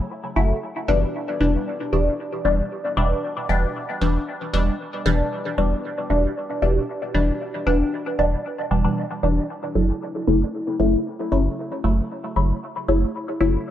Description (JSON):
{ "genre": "dub techno", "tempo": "115 BPM", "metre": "4/4", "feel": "straight", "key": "unclear", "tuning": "A4 = 440 Hz", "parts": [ { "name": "filtered dub chord stab", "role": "stabs", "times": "0.0-13.7 s", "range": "B2 to E4", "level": "-22 LUFS", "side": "left 1 dB", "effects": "phaser, dub echo" }, { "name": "round analog bass", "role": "bass", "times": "0.4-13.6 s", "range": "E1 to F#1", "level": "-22 LUFS", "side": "equal", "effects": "none" } ], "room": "moderate spring reverb, RT60 2.3 s", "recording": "none", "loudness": "-20 LUFS", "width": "side -11 dB against mid", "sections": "0.0-13.7 A section", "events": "none", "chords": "0.0 F#m7; 1.1 Em7; 9.5 F#m7" }